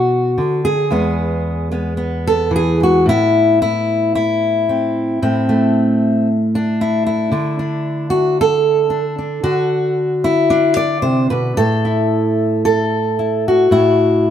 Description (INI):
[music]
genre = folk, solo fingerstyle acoustic guitar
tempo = 113 BPM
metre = 4/4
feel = rubato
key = A dorian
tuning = A4 = 440 Hz
[part]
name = fingerpicked steel-string acoustic guitar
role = solo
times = 0.0-14.3 s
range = E2 to D5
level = -14 LUFS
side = equal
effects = none
[sound]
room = moderate stone room reverb, RT60 1.1 s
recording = band playing live in one room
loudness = -14 LUFS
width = side -9 dB against mid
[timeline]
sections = 0.0-3.1 A section; 3.1-14.3 B section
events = none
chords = 0.0 Bm; 0.9 E; 3.1 Amadd9; 7.3 Dadd9; 11.6 A5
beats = 0.38 | 0.91 1.44 1.98 2.52 | 3.07 3.62 4.16 4.69 | 5.22 5.75 6.28 6.80 | 7.32 7.84 8.37 8.90 | 9.43 9.95 10.48 11.03 | 11.57 12.11 12.65 13.18 | 13.71 14.24